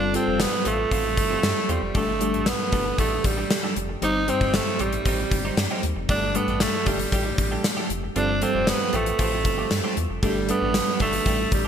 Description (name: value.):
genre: 1980s-style pop.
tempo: 116 BPM.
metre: 4/4.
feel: straight.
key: G mixolydian.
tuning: A4 = 440 Hz.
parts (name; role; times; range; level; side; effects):
raspy tenor saxophone; melody; 0.0-11.7 s; G3 to Eb4; -25 LUFS; right 2 dB; ping-pong delay.
FM electric piano with auto-pan; accompaniment; 0.0-11.7 s; G2 to C5; -29 LUFS; left 1 dB; phaser.
twelve-string electric guitar; riff; 0.0-11.7 s; F3 to A4; -32 LUFS; right 3 dB; lush chorus, ping-pong delay.
round analog bass; bass; 0.0-11.7 s; F1 to G2; -30 LUFS; equal; none.
gated 80s drum kit; drums; 0.1-11.6 s; hi-hat, kick drum, snare drum; -25 LUFS; left 1 dB; none.
room: moderate lush hall reverb, RT60 1.8 s, small room ambience.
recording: bright 1980s-style digital production.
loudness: -21 LUFS.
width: side -8 dB against mid.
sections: 0.0-11.7 A section.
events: none.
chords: 0.0 Fadd9; 2.0 Gsus2; 4.0 Cm/G; 6.1 Gsus2; 8.2 Fadd9; 10.2 Gsus2.